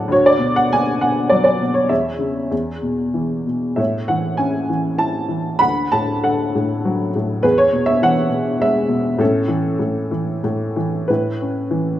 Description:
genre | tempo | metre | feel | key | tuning
classical, lyrical solo piano | 92-103 BPM | 3/4 | rubato | A major | A4 = 439 Hz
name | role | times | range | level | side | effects
warm upright piano | solo | 0.0-12.0 s | D2 to B5 | -16 LUFS | equal | none
room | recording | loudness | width
moderate recital hall reverb, RT60 1.3 s | none | -16 LUFS | side -12 dB against mid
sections
0.0-11.1 A section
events
none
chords
0.1 Bm/D; 1.9 C#m/E; 2.5 E5; 3.8 A; 5.6 D; 7.4 E; 9.2 A

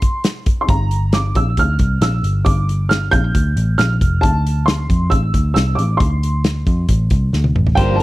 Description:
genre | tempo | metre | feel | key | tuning
jangly indie pop | 136 BPM | 4/4 | straight | unclear | A4 = 439 Hz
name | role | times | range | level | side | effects
dark upright piano | melody | 0.0-8.0 s | G5 to G6 | -20 LUFS | right 2 dB | slapback echo
loose indie drum kit | drums | 0.0-8.0 s | hi-hat, kick drum, snare drum, toms | -18 LUFS | equal | none
vintage muted picked electric bass | bass | 0.7-8.0 s | F1 to F2 | -17 LUFS | equal | none
clean electric guitar | accompaniment | 7.8-8.0 s | G2 to G4 | -20 LUFS | right 4 dB | none
overdriven combo organ | accompaniment | 7.8-8.0 s | F4 to Bb4 | -24 LUFS | right 10 dB | none
electric guitar through a small old amp | arpeggios | 7.8-8.0 s | C5 | -20 LUFS | left 5 dB | slapback echo
room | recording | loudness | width
studio ambience | dry, close 1970s-style studio recording | -14 LUFS | side -18 dB against mid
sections
0.0-8.0 A section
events
drum fill 7.3-7.8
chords
0.0 N.C.; 0.7 Gm7; 4.2 D7(no3)

